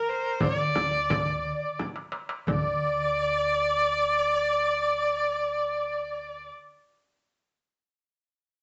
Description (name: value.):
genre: Arabic maqam ensemble.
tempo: 87 BPM.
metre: 3/4.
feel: straight.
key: unclear.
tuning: A4 = 440 Hz.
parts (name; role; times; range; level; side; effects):
rich violin; melody; 0.0-6.5 s; Bb4 to D5; -31 LUFS; equal; none.
warm harmonica; second line; 0.0-6.5 s; Bb4 to D5; -30 LUFS; equal; none.
upright bass; bass; 0.4-6.5 s; D2; -41 LUFS; equal; none.
darbuka; percussion; 0.4-2.8 s; none; -36 LUFS; equal; none.
frame drum; percussion; 0.4-2.8 s; none; -34 LUFS; equal; none.
room: wet studio reverb, RT60 0.7 s.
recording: nothing above 7.9 kHz.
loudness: -27 LUFS.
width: mono.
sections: 0.0-2.5 A section; 2.5-6.6 B section.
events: drum fill 1.8-2.5.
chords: none.